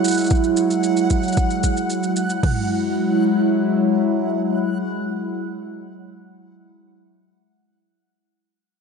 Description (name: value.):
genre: folktronica.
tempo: 113 BPM.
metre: 4/4.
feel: straight.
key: E major.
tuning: A4 = 440 Hz.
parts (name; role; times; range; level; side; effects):
warbly tape-like pad; sustained chords; 0.0-6.3 s; F#3 to E4; -19 LUFS; right 1 dB; chorus, built-in reverb, phaser.
shaker; drums; 0.0-2.4 s; none; -29 LUFS; right 2 dB; overdrive.
backwards swelling texture; texture; 0.0-2.4 s; F#5; -29 LUFS; equal; built-in reverb.
organic electronic drum kit; drums; 0.3-2.6 s; crash cymbal, kick drum, toms; -20 LUFS; equal; overdrive.
room: wet scoring stage reverb, RT60 1.8 s.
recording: nothing above 10.9 kHz.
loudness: -18 LUFS.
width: side -5 dB against mid.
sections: 0.0-2.4 A section; 2.4-6.7 B section.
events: none.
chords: 0.0 Eadd9.